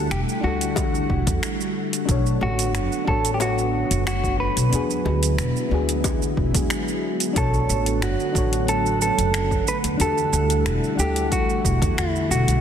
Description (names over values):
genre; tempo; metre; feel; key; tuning
sunset chillout; 91 BPM; 4/4; straight; B minor; A4 = 440 Hz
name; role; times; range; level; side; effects
clean electric guitar; melody; 0.0-12.6 s; E4 to B4; -26 LUFS; right 1 dB; spring reverb, tape echo
mellow FM electric piano; accompaniment; 0.0-12.6 s; G3 to F#5; -28 LUFS; moving between left 8 dB and right 2 dB; chorus, auto-pan, cassette tape, tape echo
soft string machine; sustained chords; 0.0-12.6 s; D3 to F#5; -28 LUFS; right 1 dB; ensemble chorus
upright bass; bass; 0.0-12.6 s; E1 to E2; -24 LUFS; equal; none
deep house drum kit; drums; 0.1-12.6 s; finger snaps, hi-hat, shaker; -28 LUFS; right 2 dB; overdrive, soft clipping on snare
electronic kick drum; drums; 0.8-11.9 s; none; -26 LUFS; equal; overdrive
bongos; percussion; 0.8-6.2 s; none; -32 LUFS; left 6 dB; none
room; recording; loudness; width
light reverb, digital ambience; dense, heavily limited modern master; -19 LUFS; side -8 dB against mid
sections
0.0-7.4 A section; 7.4-12.6 B section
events
none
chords
0.0 Em11; 2.1 Bm7; 4.7 E9; 7.4 Bm7; 9.7 Em11